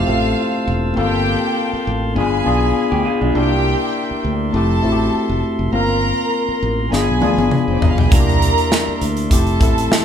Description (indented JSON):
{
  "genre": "lush 1970s-style soul",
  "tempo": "101 BPM",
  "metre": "4/4",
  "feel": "swing 54% on 16ths",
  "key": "G dorian",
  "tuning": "A4 = 440 Hz",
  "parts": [
    { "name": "warm studio violin section", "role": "second line", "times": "0.0-10.0 s", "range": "C4 to Bb5", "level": "-23 LUFS", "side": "right 1 dB", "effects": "none" },
    { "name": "tine electric piano", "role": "accompaniment", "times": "0.0-10.0 s", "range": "A3 to Bb4", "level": "-19 LUFS", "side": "left 3 dB", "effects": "overdrive" },
    { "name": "tonewheel organ", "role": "sustained chords", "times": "0.0-10.0 s", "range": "Bb3 to E6", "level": "-26 LUFS", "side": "equal", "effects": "stopped rotary speaker" },
    { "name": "modern bright fingered electric bass", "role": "bass", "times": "0.0-9.9 s", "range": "E1 to D2", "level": "-20 LUFS", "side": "right 1 dB", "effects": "none" },
    { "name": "electric guitar through a small old amp", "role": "riff", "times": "2.9-3.5 s", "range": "D4 to Ab4", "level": "-22 LUFS", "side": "right 3 dB", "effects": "spring reverb" },
    { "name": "modern studio drum kit", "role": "drums", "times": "6.9-10.0 s", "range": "hi-hat, kick drum, snare drum, toms", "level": "-16 LUFS", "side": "right 1 dB", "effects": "none" }
  ],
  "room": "moderate large studio reverb, RT60 1.0 s",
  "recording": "band playing live in one room",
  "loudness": "-15 LUFS",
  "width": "side -8 dB against mid",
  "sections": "0.0-10.0 A section",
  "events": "drum fill 6.9-8.1",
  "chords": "0.0 Fmaj7; 1.0 Gm11; 2.2 G7b9; 3.4 C9; 4.5 Fmaj7; 5.7 Gm11; 6.9 G7b9; 8.1 C9; 9.3 Fmaj7",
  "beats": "0.37 | 0.97 1.56 2.16 2.76 | 3.35 3.95 4.54 5.14 | 5.73 6.33 6.92 7.52 | 8.12 8.71 9.31 9.90"
}